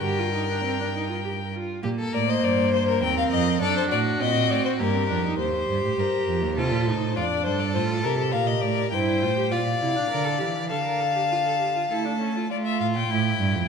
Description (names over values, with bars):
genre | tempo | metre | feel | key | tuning
classical, baroque-style fugue for string quartet | 101 BPM | 3/4 | straight | G minor, D minor from 8.9 s | A4 = 439 Hz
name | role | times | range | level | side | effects
rich violin | melody | 0.0-13.7 s | A4 to A5 | -28 LUFS | left 9 dB | none
clear violin | second line | 0.0-13.7 s | E4 to F5 | -28 LUFS | left 3 dB | none
rich viola | accompaniment | 0.0-12.4 s | Bb3 to Bb4 | -28 LUFS | right 2 dB | none
rich cello | bass | 0.0-13.7 s | Eb2 to A3 | -27 LUFS | right 5 dB | none
room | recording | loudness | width
wet scoring stage reverb, RT60 2.0 s | minimal, uncompressed stereo recording | -22 LUFS | side -6 dB against mid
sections
0.0-1.8 A section; 1.8-5.4 B section; 5.4-12.5 A section; 12.5-13.7 C section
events
none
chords
0.0 Gm; 3.0 Cm/Eb; 3.6 D7; 4.8 Gm; 5.4 Cm/Eb; 6.6 Adim; 7.2 Dm/F; 8.3 Bb; 8.9 Gm; 10.7 Dm; 11.9 A; 12.5 Dm/A (rootless)